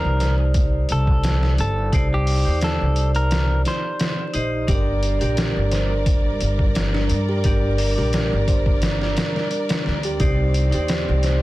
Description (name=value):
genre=trip hop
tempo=87 BPM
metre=4/4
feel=swing 53% on 16ths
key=G minor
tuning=A4 = 440 Hz
part: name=clean electric guitar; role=melody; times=0.0-4.6 s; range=G4 to C5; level=-27 LUFS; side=equal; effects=tape echo
part: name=vibraphone with hard mallets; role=accompaniment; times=0.0-11.4 s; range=D4 to Eb5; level=-26 LUFS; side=right 1 dB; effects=harmonic tremolo, tape echo
part: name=upright bass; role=bass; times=0.0-11.4 s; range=G1 to G2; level=-21 LUFS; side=equal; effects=none
part: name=trip hop sampler-style drum kit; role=drums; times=0.2-11.4 s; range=hi-hat, kick drum, snare drum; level=-23 LUFS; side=equal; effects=none
part: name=rich studio string section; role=sustained chords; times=4.7-11.4 s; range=Eb3 to D5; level=-29 LUFS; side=equal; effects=none
part: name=music box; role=arpeggios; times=4.7-11.4 s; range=D4 to D5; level=-30 LUFS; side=right 1 dB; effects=tape echo
room=studio ambience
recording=dense, heavily limited modern master, vinyl crackle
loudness=-18 LUFS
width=side -17 dB against mid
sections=0.0-11.4 A section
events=none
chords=0.0 Cmadd9; 4.7 Gm; 10.2 Cmadd9